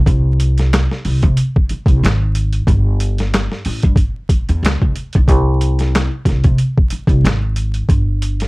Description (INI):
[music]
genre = R&B, neo-soul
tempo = 92 BPM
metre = 4/4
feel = swing 55% on 16ths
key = unclear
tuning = A4 = 440 Hz
[part]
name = upright bass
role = bass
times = 0.0-8.5 s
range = G1 to C3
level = -15 LUFS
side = equal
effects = none
[part]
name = boom bap sampler-style drum kit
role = drums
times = 0.1-8.5 s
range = handclaps, hi-hat, kick drum, snare drum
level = -15 LUFS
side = equal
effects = overdrive
[sound]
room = little or no reverb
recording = vinyl crackle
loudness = -13 LUFS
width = side -24 dB against mid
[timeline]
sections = 0.0-8.5 A section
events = none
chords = none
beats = | 0.06 0.72 1.37 2.02 | 2.67 3.32 3.98 4.63 | 5.28 5.93 6.58 7.24 | 7.89